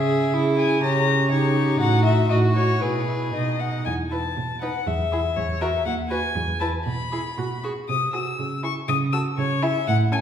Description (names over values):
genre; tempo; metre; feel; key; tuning
quick classical-period movement for string quartet; 120 BPM; 2/4; rubato; E major; A4 = 439 Hz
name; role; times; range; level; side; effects
rich violin; melody; 0.0-10.2 s; B4 to E6; -25 LUFS; left 5 dB; none
warm violin; second line; 0.0-10.2 s; C#4 to B4; -28 LUFS; left 1 dB; none
warm viola; accompaniment; 0.0-10.2 s; C#4 to G#4; -29 LUFS; right 2 dB; none
dark cello; bass; 0.0-10.2 s; D#2 to C#3; -24 LUFS; right 2 dB; none
room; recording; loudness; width
wet recital hall reverb, RT60 1.6 s; heard from further back in the room; -20 LUFS; side -9 dB against mid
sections
0.0-3.9 A section; 3.9-10.2 B section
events
none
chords
0.0 C#m; 0.8 D#7/C#; 1.8 F#m/A; 2.8 E/B; 3.3 B; 3.9 N.C.; 4.4 B7; 4.9 N.C.; 5.4 F#7(no3)/E; 5.9 B/D# (rootless); 6.4 E; 6.9 E5/B; 7.4 B5; 7.9 G#7/B#; 8.4 C#m; 8.9 F#m/C#; 9.4 C#m